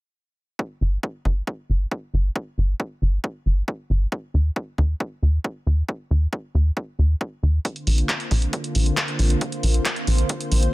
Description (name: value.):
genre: uplifting trance.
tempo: 136 BPM.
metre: 4/4.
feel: straight.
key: unclear.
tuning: A4 = 439 Hz.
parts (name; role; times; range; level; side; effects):
electronic kick drum; drums; 0.6-10.4 s; none; -28 LUFS; equal; high-pass filter on kick.
tight sequencer bass; bass; 0.8-10.7 s; G1 to Eb2; -18 LUFS; equal; sidechain pumping.
lush unison pad; sustained chords; 7.6-10.7 s; D3 to C5; -27 LUFS; equal; chorus, sidechain pumping.
punchy analog drum machine; drums; 7.7-10.7 s; handclaps, hi-hat; -26 LUFS; equal; low-pass filter on hats, low-pass filter on snare.
room: digital ambience.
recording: none.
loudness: -21 LUFS.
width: side -19 dB against mid.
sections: 0.6-10.7 A section.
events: filter sweep on analog synth bass 0.6-10.7.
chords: 0.6 N.C.; 7.7 Bbadd9.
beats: | 0.59 1.03 1.47 1.91 | 2.36 2.80 3.24 3.68 | 4.12 4.56 5.00 5.44 | 5.88 6.33 6.77 7.21 | 7.65 8.09 8.53 8.97 | 9.41 9.86 10.30.